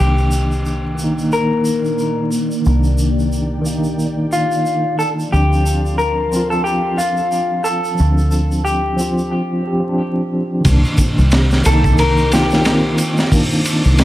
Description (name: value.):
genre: trip hop.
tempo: 90 BPM.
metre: 4/4.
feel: swing 58% on 16ths.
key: C dorian.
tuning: A4 = 441 Hz.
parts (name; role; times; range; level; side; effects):
electric guitar through a small old amp; melody; 0.0-13.0 s; F4 to Bb4; -20 LUFS; left 2 dB; vintage 12-bit sampler grit, tape echo.
mellow tine electric piano; accompaniment; 0.0-14.0 s; Eb3 to G4; -19 LUFS; equal; tremolo, low-pass filter, tape echo.
string machine, cellos; sustained chords; 0.0-14.0 s; Bb3 to D6; -26 LUFS; equal; ensemble chorus.
deep dub fingered electric bass; bass; 0.0-14.0 s; C2 to D2; -16 LUFS; equal; none.
tube shaker; percussion; 0.2-14.0 s; none; -31 LUFS; right 1 dB; none.
crunchy breakbeat drum kit; drums; 10.6-14.0 s; hi-hat, kick drum, ride cymbal, snare drum; -18 LUFS; equal; none.
room: light reverb, small room ambience.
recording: vinyl crackle.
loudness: -14 LUFS.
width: side -14 dB against mid.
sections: 0.0-10.7 A section; 10.7-14.0 B section.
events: filter sweep on tine electric piano 0.0-10.7; filter sweep on string machine 0.0-10.7; break 9.3-10.7.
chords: 0.0 Cm9; 5.3 Dm7; 10.7 Cm9.